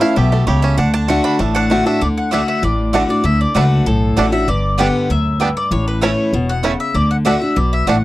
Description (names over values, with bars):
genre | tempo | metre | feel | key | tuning
bluegrass | 194 BPM | 4/4 | straight | D major | A4 = 440 Hz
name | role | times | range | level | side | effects
picked steel-string acoustic guitar | accompaniment | 0.0-8.0 s | F#2 to G4 | -18 LUFS | left 2 dB | none
bluegrass banjo | arpeggios | 0.0-8.0 s | G3 to G4 | -20 LUFS | right 4 dB | none
mandolin | stabs | 0.0-8.0 s | A3 to C#6 | -21 LUFS | right 6 dB | none
upright bass | bass | 0.2-8.0 s | E1 to D2 | -18 LUFS | equal | none
mandolin | melody | 1.6-8.0 s | A4 to F#5 | -21 LUFS | left 2 dB | none
room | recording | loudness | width
little or no reverb | dry, close 1970s-style studio recording | -13 LUFS | side -16 dB against mid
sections
0.0-2.0 A section; 2.0-8.0 B section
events
mandolin solo 0.0-2.0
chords
0.0 A; 0.8 D; 4.5 G; 5.7 A; 7.0 D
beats
0.16 0.47 | 0.78 1.09 1.40 1.71 | 2.01 2.32 2.63 2.94 | 3.25 3.56 3.86 4.17 | 4.48 4.79 5.10 5.41 | 5.71 6.02 6.33 6.64 | 6.95 7.26 7.57 7.88